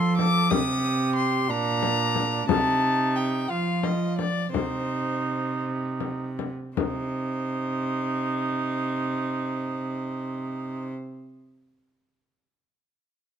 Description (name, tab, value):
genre	classical, renaissance-style consort dance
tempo	52-62 BPM (dotted quarters)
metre	6/8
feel	straight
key	C dorian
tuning	A4 = 439 Hz
part	rich violin	melody	0.0-10.9 s	C5 to Eb6	-30 LUFS	left 5 dB	none
part	mellow cor anglais	second line	0.0-10.9 s	D4 to A4	-30 LUFS	right 5 dB	none
part	rich cello	bass	0.0-10.9 s	Bb2 to F3	-27 LUFS	right 2 dB	none
part	frame drum	percussion	0.2-7.1 s	none	-28 LUFS	left 9 dB	none
room	light reverb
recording	none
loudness	-24 LUFS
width	side -8 dB against mid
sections	0.0-6.8 A section; 6.8-11.4 B section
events	slowing down 1.5-6.8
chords	0.0 F; 0.5 Cm; 1.5 Bb; 2.5 Cm; 3.5 Dm/F; 4.5 Cm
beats	| 0.51 1.49 | 2.48 3.49 | 4.54 5.63 | 6.77 7.93 | 9.09 10.25